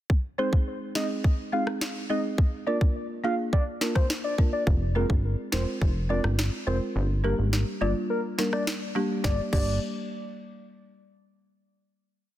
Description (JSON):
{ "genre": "dancehall", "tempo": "105 BPM", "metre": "4/4", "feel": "straight", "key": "G phrygian", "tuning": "A4 = 440 Hz", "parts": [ { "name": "island pop drum kit", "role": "drums", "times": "0.1-9.7 s", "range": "crash cymbal, kick drum, rim click, snare drum", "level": "-26 LUFS", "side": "equal", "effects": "none" }, { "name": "soft octave-layered synth lead", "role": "melody", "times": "0.4-9.8 s", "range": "Bb4 to F5", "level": "-32 LUFS", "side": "left 1 dB", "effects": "chorus, ping-pong delay" }, { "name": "folk marimba with medium mallets", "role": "accompaniment", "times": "0.4-9.8 s", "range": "G3 to Bb4", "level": "-31 LUFS", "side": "right 1 dB", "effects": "sidechain pumping" }, { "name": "plucky analog bass", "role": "bass", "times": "4.7-9.8 s", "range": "F1 to Ab1", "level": "-26 LUFS", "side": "equal", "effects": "none" } ], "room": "digital ambience", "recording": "dense, heavily limited modern master", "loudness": "-24 LUFS", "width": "side -13 dB against mid", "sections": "0.1-9.2 verse; 9.2-11.5 final chord", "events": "kick muted 7.0-9.2", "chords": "0.1 Ab; 2.4 Bb; 4.7 Fm; 7.0 Gm" }